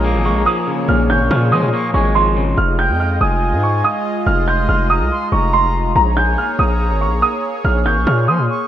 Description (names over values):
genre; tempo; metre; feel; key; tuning
hip hop; 142 BPM; 4/4; half-time; F minor; A4 = 440 Hz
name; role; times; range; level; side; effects
dark grand piano; melody; 0.0-8.7 s; Bb5 to G6; -18 LUFS; right 2 dB; low-pass filter, ping-pong delay
reedy concert flute; second line; 0.0-8.7 s; G5 to Db6; -25 LUFS; left 1 dB; ping-pong delay
electric guitar at the edge of break-up; accompaniment; 0.0-2.6 s; Bb2 to Bb3; -20 LUFS; left 2 dB; spring reverb, low-pass filter
warm analog pad; sustained chords; 0.0-8.7 s; Ab3 to Eb5; -23 LUFS; equal; chorus
distorted 808-style bass; bass; 0.0-8.5 s; F1 to F3; -17 LUFS; equal; distortion
room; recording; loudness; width
light reverb, small room ambience; rough home demo mix, nothing above 10.8 kHz; -13 LUFS; side -11 dB against mid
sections
0.0-2.6 A section; 2.6-8.7 A section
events
none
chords
0.0 Bbm7; 2.6 Fm7; 6.0 Bbm7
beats
0.04 0.46 | 0.89 1.31 1.73 2.15 | 2.58 3.00 3.42 3.84 | 4.26 4.69 5.11 5.53 | 5.96 6.38 6.80 7.22 | 7.64 8.07 8.49